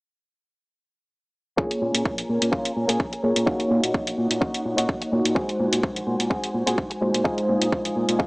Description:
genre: filtered disco house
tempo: 127 BPM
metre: 4/4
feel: swing 54% on 16ths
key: Bb minor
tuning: A4 = 440 Hz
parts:
  - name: mellow tine electric piano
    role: accompaniment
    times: 1.6-8.3 s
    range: Ab3 to Db5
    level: -25 LUFS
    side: equal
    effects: medium stereo tremolo, phaser, sidechain pumping, low-pass filter
  - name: phased string machine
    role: sustained chords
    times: 1.6-8.3 s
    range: Db4 to Ab5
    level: -31 LUFS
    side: equal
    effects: ensemble chorus, phaser, vintage 12-bit sampler grit, sidechain pumping, low-pass filter
  - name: direct-recorded clean electric guitar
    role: riff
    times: 1.6-8.3 s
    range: Bb3 to Ab4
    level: -28 LUFS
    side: equal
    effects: sidechain pumping, low-pass filter
  - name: modern bright fingered electric bass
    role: bass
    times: 1.6-8.3 s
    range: Bb1 to Bb2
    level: -27 LUFS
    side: equal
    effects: sidechain pumping, low-pass filter
  - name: electronic kick drum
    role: drums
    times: 1.6-8.3 s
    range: none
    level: -26 LUFS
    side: equal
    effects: none
  - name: electronic hi-hat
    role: drums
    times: 1.7-8.2 s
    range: none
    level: -26 LUFS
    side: equal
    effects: sidechain pumping on hats
room: moderate lush hall reverb, RT60 1.9 s, digital ambience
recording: small speaker sound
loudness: -21 LUFS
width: side -29 dB against mid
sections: 1.6-8.3 A section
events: none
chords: 1.6 Bbm7; 3.5 Ebm7/Bb; 5.4 Ab7/Bb; 7.3 Fm7/Bb

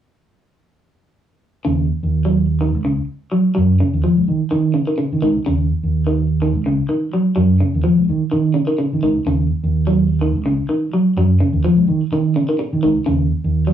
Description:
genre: afrobeat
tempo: 126 BPM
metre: 4/4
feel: swing 54% on 16ths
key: Eb minor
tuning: A4 = 441 Hz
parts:
  - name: electric guitar at the edge of break-up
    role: arpeggios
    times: 1.6-13.7 s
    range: Db3 to Gb3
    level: -17 LUFS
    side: equal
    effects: phaser
  - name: fingered electric bass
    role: bass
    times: 1.7-13.7 s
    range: Db2 to Eb3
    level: -17 LUFS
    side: right 2 dB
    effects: none
room: wet studio ambience, RT60 0.5 s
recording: rough rehearsal-room recording, warm saturation, studio ambience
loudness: -15 LUFS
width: side -10 dB against mid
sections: 1.6-13.7 A section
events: none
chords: 1.6 Ebm7

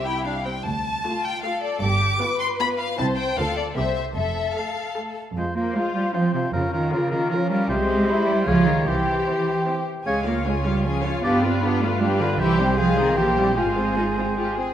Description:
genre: quick classical-period movement for symphony orchestra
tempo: 153 BPM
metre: 3/4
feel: straight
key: F major, F minor from 5.4 s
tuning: A4 = 439 Hz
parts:
  - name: rich chamber violin section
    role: melody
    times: 0.0-14.7 s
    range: Ab4 to D6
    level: -28 LUFS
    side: left 4 dB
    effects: none
  - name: rich chamber violin section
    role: second line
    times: 0.0-14.7 s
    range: Bb3 to C5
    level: -29 LUFS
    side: left 3 dB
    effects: none
  - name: rich studio viola section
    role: accompaniment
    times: 0.0-14.7 s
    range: Ab3 to Db5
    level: -29 LUFS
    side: equal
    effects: none
  - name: rich chamber cello section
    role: bass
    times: 0.0-14.4 s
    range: C2 to C4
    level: -24 LUFS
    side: right 2 dB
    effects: none
  - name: rich chamber double bass section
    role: bass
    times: 0.6-14.6 s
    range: F1 to F2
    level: -28 LUFS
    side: right 2 dB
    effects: none
  - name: clear oboe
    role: second line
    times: 5.4-14.6 s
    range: Bb4 to D5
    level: -29 LUFS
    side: right 1 dB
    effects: none
  - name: mellow hollow silver concert flute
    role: second line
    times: 5.4-14.6 s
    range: E5 to Ab5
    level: -30 LUFS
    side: equal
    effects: none
  - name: warm clarinet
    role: second line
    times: 5.4-14.6 s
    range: F4 to Ab4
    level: -28 LUFS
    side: left 1 dB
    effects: none
room: moderate concert hall reverb, RT60 1.7 s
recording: none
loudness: -20 LUFS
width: side -10 dB against mid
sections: 0.0-5.4 A section; 5.4-14.7 B section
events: none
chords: 0.0 C; 0.7 Dm; 1.8 G7; 3.0 C; 3.4 Dm; 3.8 C7; 4.2 F; 5.4 Fm; 6.5 Bbm/F; 7.7 C; 8.5 Db; 8.9 C; 10.1 Db; 11.2 G7; 12.4 C; 12.8 Fm/C; 13.2 C7/Bb; 13.6 Fm/Ab

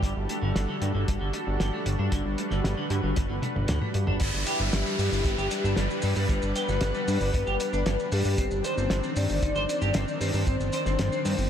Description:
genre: synthwave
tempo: 115 BPM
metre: 4/4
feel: straight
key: G major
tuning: A4 = 440 Hz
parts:
  - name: lush unison pad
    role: sustained chords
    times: 0.0-11.5 s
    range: Eb3 to F#5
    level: -32 LUFS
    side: left 1 dB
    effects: chorus, sidechain pumping
  - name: clean electric guitar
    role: riff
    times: 0.0-11.3 s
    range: D3 to C5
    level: -34 LUFS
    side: right 1 dB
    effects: lush chorus, ping-pong delay
  - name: fat analog bass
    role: bass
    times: 0.0-11.5 s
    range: G1 to G2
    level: -28 LUFS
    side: equal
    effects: sidechain pumping
  - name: cloth-damped thuddy drum kit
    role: drums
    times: 0.0-11.5 s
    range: crash cymbal, hi-hat, shaker, snare drum, toms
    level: -33 LUFS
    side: equal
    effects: none
  - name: kick drum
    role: drums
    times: 0.0-10.6 s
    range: none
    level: -27 LUFS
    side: equal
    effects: none
  - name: downlifter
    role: sound effects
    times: 4.2-8.4 s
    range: none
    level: -36 LUFS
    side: equal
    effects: none
  - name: soft octave-layered synth lead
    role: melody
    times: 4.7-11.5 s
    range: G4 to D5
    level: -31 LUFS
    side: left 3 dB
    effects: chorus, tremolo, ping-pong delay
room: moderate cathedral reverb, RT60 5.3 s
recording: dreamy mix soaked in reverb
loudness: -24 LUFS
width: side -9 dB against mid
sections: 0.0-4.2 A section; 4.2-11.5 B section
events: drum fill 3.4-4.2; kick drops out 3.7-4.2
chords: 0.0 D/G; 4.2 G6; 8.4 Cmadd9/G

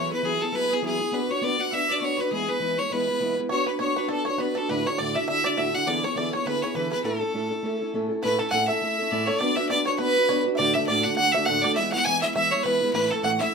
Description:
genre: celtic folk, Celtic reel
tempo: 203 BPM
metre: 4/4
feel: swing 56% on 8ths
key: A major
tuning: A4 = 441 Hz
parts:
  - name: bright fiddle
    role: melody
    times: 0.0-13.5 s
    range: G#4 to G#5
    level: -24 LUFS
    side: right 1 dB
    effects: none
  - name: bright fiddle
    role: second line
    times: 0.0-13.5 s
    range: G#4 to G#5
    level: -32 LUFS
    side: left 6 dB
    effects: none
  - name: fingerpicked steel-string acoustic guitar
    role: accompaniment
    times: 0.0-13.5 s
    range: D2 to B4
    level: -27 LUFS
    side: right 1 dB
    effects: none
  - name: bluegrass banjo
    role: second line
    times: 3.5-13.5 s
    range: A4 to G#5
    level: -31 LUFS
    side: right 3 dB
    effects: none
room: moderate studio reverb, RT60 0.5 s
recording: minimal, uncompressed stereo recording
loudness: -22 LUFS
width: side -5 dB against mid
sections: 0.0-8.2 A section; 8.2-13.5 B section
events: none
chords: 0.0 Eadd9; 1.1 Bm; 2.3 E; 3.5 Bm; 4.7 Dadd9; 5.9 E7; 7.0 A; 9.4 Bm; 10.6 D; 11.8 E; 12.9 A

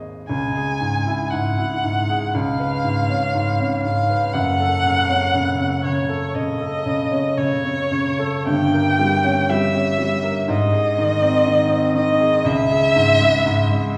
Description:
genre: classical, romantic duo for violin and grand piano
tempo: 60 BPM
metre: 4/4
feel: rubato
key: C# minor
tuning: A4 = 440 Hz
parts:
  - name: clear baby grand piano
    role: accompaniment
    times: 0.0-14.0 s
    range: F#1 to D#5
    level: -22 LUFS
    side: equal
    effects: none
  - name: rich violin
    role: melody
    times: 0.3-14.0 s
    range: C#5 to G#5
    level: -22 LUFS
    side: equal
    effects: none
room: wet recital hall reverb, RT60 1.5 s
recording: heard from further back in the room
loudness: -19 LUFS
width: mono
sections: 0.3-14.0 A section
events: none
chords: 0.3 C#m; 2.3 C#7; 4.3 F#m; 8.5 Gdim7; 10.5 G#; 12.5 C#m

